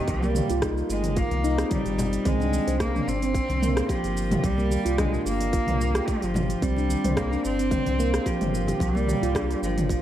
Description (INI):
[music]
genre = organic downtempo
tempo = 110 BPM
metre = 4/4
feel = swing 54% on 16ths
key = unclear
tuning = A4 = 438 Hz
[part]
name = bright cello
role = melody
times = 0.0-10.0 s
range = Eb3 to C4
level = -28 LUFS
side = left 1 dB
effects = tape echo
[part]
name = handpan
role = arpeggios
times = 0.0-10.0 s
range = Bb3 to C5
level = -28 LUFS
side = right 2 dB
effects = tape echo
[part]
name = warm sub bass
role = bass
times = 0.1-10.0 s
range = G1 to C2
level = -28 LUFS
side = equal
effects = none
[part]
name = electronic kick drum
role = drums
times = 0.1-10.0 s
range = none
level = -29 LUFS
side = equal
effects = none
[part]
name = organic electronic drum kit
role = drums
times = 0.1-10.0 s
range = hi-hat, rim click, shaker, toms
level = -30 LUFS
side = equal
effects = none
[part]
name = congas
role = percussion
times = 0.2-9.9 s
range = none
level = -35 LUFS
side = left 2 dB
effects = none
[sound]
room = light reverb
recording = none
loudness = -22 LUFS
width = side -11 dB against mid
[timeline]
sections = 0.0-10.0 A section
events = none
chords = 0.0 Cm7; 2.3 Bbadd9 (rootless)